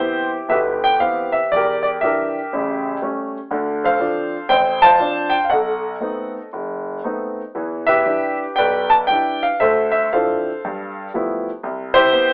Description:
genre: solo jazz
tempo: 119 BPM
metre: 4/4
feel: swing 68% on 8ths, rubato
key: C major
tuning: A4 = 438 Hz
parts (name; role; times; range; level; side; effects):
- warm grand piano; solo; 0.0-12.3 s; F#1 to A5; -16 LUFS; equal; none
room: moderate small room reverb, RT60 0.5 s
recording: band playing live in one room, telephone sound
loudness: -16 LUFS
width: side -32 dB against mid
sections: 0.0-12.3 A section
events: none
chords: 0.0 Cmaj7; 1.5 Em7b5; 2.5 A7; 3.5 Dm7; 5.5 B7b9; 7.5 Em7; 9.6 Dm9; 10.6 G13; 11.6 Cmaj7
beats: 0.49 1.01 | 1.51 2.02 2.52 3.01 | 3.51 4.00 4.50 4.99 | 5.49 5.99 6.51 7.03 | 7.55 8.06 8.58 9.10 | 9.61 10.12 10.63 11.13 | 11.62 12.11

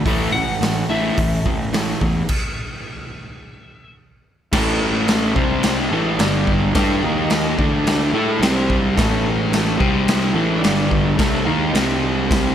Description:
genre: garage rock duo or trio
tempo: 108 BPM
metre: 4/4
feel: straight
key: A major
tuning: A4 = 439 Hz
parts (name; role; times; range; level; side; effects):
- overdriven combo organ; sustained chords; 0.0-12.5 s; C4 to D#5; -30 LUFS; left 1 dB; none
- fuzz guitar; riff; 0.1-12.5 s; G2 to A4; -19 LUFS; equal; distortion
- fuzz picked electric bass; bass; 0.1-12.5 s; G1 to A2; -24 LUFS; equal; overdrive
- raw garage drum kit; drums; 0.1-12.4 s; crash cymbal, hi-hat, kick drum, snare drum; -21 LUFS; equal; none
- electric slide guitar; melody; 0.3-3.9 s; E5 to F#5; -26 LUFS; left 1 dB; none
room: light reverb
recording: none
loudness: -16 LUFS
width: side -9 dB against mid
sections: 0.0-4.5 A section; 4.5-12.5 B section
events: stop 2.3-4.5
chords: 0.0 A; 4.0 N.C.; 4.5 A; 5.4 C5; 5.9 A; 6.2 G5; 6.7 A; 7.0 D#5; 7.6 D5; 8.1 A; 8.4 C5; 9.0 A; 9.8 C5; 10.4 A; 10.6 G5; 11.2 A; 11.7 C5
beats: | 0.04 0.60 1.17 1.73 | 2.29 2.85 3.40 3.96 | 4.52 5.08 5.63 6.19 | 6.75 7.30 7.86 8.41 | 8.97 9.53 10.08 10.64 | 11.19 11.75 12.30

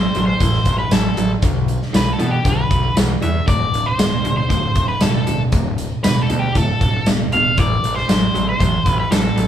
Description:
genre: classic rock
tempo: 117 BPM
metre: 4/4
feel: straight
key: unclear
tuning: A4 = 440 Hz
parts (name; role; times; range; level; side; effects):
- octave-fuzz lead guitar; melody; 0.0-9.5 s; G4 to F5; -21 LUFS; left 1 dB; distortion
- cranked stack guitar; riff; 0.0-9.5 s; D2 to F#3; -21 LUFS; right 1 dB; overdrive
- growling picked electric bass; bass; 0.0-9.5 s; D1 to B2; -23 LUFS; equal; overdrive
- big rock drum kit; drums; 0.1-9.5 s; hi-hat, kick drum, snare drum, tambourine; -19 LUFS; equal; none
room: moderate large studio reverb, RT60 1.2 s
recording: band playing live in one room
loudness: -15 LUFS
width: side -10 dB against mid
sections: 0.0-9.5 A section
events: none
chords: 0.0 Am; 1.4 G/B; 3.5 D5; 7.6 Am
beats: 0.41 0.92 | 1.43 1.94 2.46 2.97 | 3.48 3.99 4.50 5.01 | 5.53 6.04 6.55 7.06 | 7.57 8.09 8.60 9.11

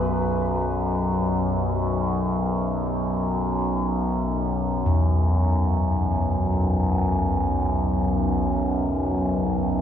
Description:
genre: dark ambient drone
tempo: free time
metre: none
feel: none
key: unclear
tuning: A4 = 440 Hz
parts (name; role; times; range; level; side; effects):
- gamelan-type bossed gongs; arpeggios; 0.0-9.8 s; E2 to F#4; -26 LUFS; left 1 dB; diffuse ambient delay
- overtone-sweeping drone; drone; 0.0-9.8 s; B1 to F#2; -22 LUFS; equal; chorus, built-in reverb
- dark analog pad; sustained chords; 4.6-9.8 s; C#4 to B4; -34 LUFS; right 3 dB; chorus
room: wet cathedral reverb, RT60 5.2 s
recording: dreamy mix soaked in reverb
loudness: -21 LUFS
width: side -9 dB against mid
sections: 0.1-9.8 A section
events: fade-in on analog synth pad 0.1-9.8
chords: 0.1 Bsus2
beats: free time

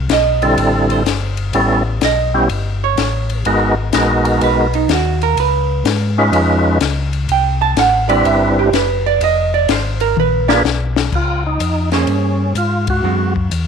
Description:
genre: soul jazz organ trio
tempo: 125 BPM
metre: 4/4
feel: swing 67% on 8ths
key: unclear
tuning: A4 = 440 Hz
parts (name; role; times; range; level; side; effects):
- mellow tonewheel organ; bass; 0.0-13.7 s; F1 to Ab2; -18 LUFS; left 2 dB; slow rotary speaker
- vintage hollow-body jazz guitar; accompaniment; 0.1-13.3 s; D3 to A5; -17 LUFS; right 9 dB; none
- compact cocktail drum kit; drums; 0.1-13.7 s; crash cymbal, hi-hat, kick drum, ride cymbal, snare drum, toms; -21 LUFS; left 10 dB; none
- percussive tonewheel organ; melody; 0.4-13.3 s; D3 to Cb5; -16 LUFS; right 1 dB; slow rotary speaker, overdrive, chorus vibrato
room: moderate spring reverb, RT60 1.4 s, studio ambience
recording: 1960s-style stereo with parts hard left and right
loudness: -13 LUFS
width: side -6 dB against mid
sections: 0.0-11.1 A section; 11.1-13.7 B section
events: hollow-body jazz guitar solo 0.0-11.1; drum fill 10.2-11.1; band accent 12.8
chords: 0.0 C6; 1.5 A9; 3.5 Abm7; 5.4 Db9; 7.3 Cmaj7; 9.2 Fm; 10.2 Bb7b9; 11.1 Bbm9; 13.0 D7#11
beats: 0.10 0.58 1.06 | 1.54 2.02 2.50 2.98 | 3.46 3.94 4.42 4.89 | 5.38 5.85 6.33 6.81 | 7.29 7.77 8.25 8.73 | 9.21 9.68 10.16 10.64 | 11.12 11.60 12.08 12.56 | 13.04 13.51

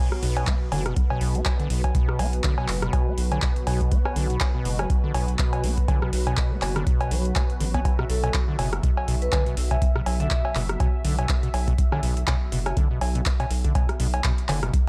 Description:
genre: acid house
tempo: 122 BPM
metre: 4/4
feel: swing 56% on 16ths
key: B minor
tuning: A4 = 440 Hz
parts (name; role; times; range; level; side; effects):
- warm analog pad; sustained chords; 0.0-14.9 s; B2 to E5; -36 LUFS; equal; chorus, sidechain pumping
- acid bass, square; riff; 0.0-14.7 s; B2 to B3; -33 LUFS; equal; overdrive, tape echo
- electro analog drum machine; drums; 0.1-14.8 s; cowbell, handclaps, hi-hat, rim click; -32 LUFS; equal; none
- round analog bass; bass; 0.2-14.7 s; F#1 to B1; -28 LUFS; equal; sidechain pumping
- electronic kick drum; drums; 0.5-14.8 s; none; -26 LUFS; equal; none
- vibraphone with hard mallets; melody; 8.1-10.6 s; A4 to E5; -34 LUFS; equal; analog delay
room: digital ambience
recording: dry, gritty hardware recording, transformer saturation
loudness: -24 LUFS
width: mono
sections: 0.0-14.9 A section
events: none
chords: 0.0 B5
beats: 0.47 0.96 1.46 | 1.95 2.44 2.93 3.42 | 3.92 4.41 4.90 5.39 | 5.88 6.38 6.87 7.36 | 7.85 8.34 8.83 9.33 | 9.82 10.31 10.80 11.29 | 11.79 12.28 12.77 13.26 | 13.75 14.24 14.74

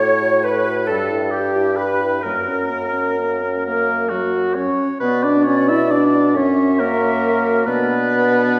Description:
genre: classical, slow romantic movement for wind quintet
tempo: 42-47 BPM (dotted quarters)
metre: 6/8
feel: rubato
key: B minor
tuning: A4 = 437 Hz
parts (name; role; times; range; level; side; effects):
- bright silver concert flute; melody; 0.0-8.6 s; G4 to E5; -28 LUFS; equal; none
- warm oboe; second line; 0.0-8.6 s; F#4 to E5; -24 LUFS; equal; none
- clear clarinet; accompaniment; 0.0-8.6 s; D4 to C#5; -27 LUFS; equal; none
- warm French horn; accompaniment; 0.0-8.6 s; F#3 to A4; -22 LUFS; equal; none
- mellow bassoon; bass; 0.0-8.6 s; F#2 to B2; -24 LUFS; equal; none
room: wet scoring stage reverb, RT60 1.6 s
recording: heard from further back in the room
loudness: -18 LUFS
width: mono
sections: 0.0-5.0 A section; 5.0-8.6 B section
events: none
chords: 0.0 F#m/A; 0.9 Em/G; 2.2 F#; 5.0 Bm; 6.3 F#7; 7.7 Bm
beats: 0.89 | 2.25 3.65 | 5.00 6.35 | 7.66

